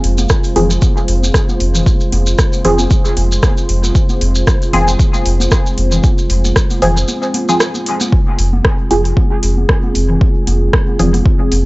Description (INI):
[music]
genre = dub techno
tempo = 115 BPM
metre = 4/4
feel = swing 56% on 16ths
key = F minor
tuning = A4 = 439 Hz
[part]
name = dark analog pad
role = sustained chords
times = 0.0-11.7 s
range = Ab3 to C5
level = -21 LUFS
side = right 1 dB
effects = chorus, sidechain pumping
[part]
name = soft dub sub bass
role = bass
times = 0.0-11.7 s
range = F1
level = -14 LUFS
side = equal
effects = tube saturation, sidechain pumping
[part]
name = deep house drum kit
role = drums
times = 0.0-11.6 s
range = hi-hat, rim click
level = -19 LUFS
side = equal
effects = overdrive, dub echo
[part]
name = congas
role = percussion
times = 0.2-11.6 s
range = none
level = -23 LUFS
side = equal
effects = overdrive, sidechain pumping on perc
[part]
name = maracas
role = percussion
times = 0.2-8.1 s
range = none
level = -23 LUFS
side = right 1 dB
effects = none
[part]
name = electronic kick drum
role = drums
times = 0.3-11.4 s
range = none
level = -13 LUFS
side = equal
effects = overdrive
[part]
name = filtered dub chord stab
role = stabs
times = 0.6-11.2 s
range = F3 to Ab4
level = -18 LUFS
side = equal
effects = chorus, phaser, vintage 12-bit sampler grit, dub echo
[sound]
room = little or no reverb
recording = dry, gritty hardware recording, cassette tape, nothing above 7.9 kHz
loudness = -11 LUFS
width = side -21 dB against mid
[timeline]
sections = 0.0-8.1 A section; 8.1-11.7 A section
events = break 7.1-8.1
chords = 0.0 Fm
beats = 0.30 0.82 1.34 | 1.86 2.39 2.91 3.43 | 3.95 4.47 5.00 5.52 | 6.04 6.56 7.08 7.60 | 8.12 8.65 9.17 9.69 | 10.21 10.73 11.26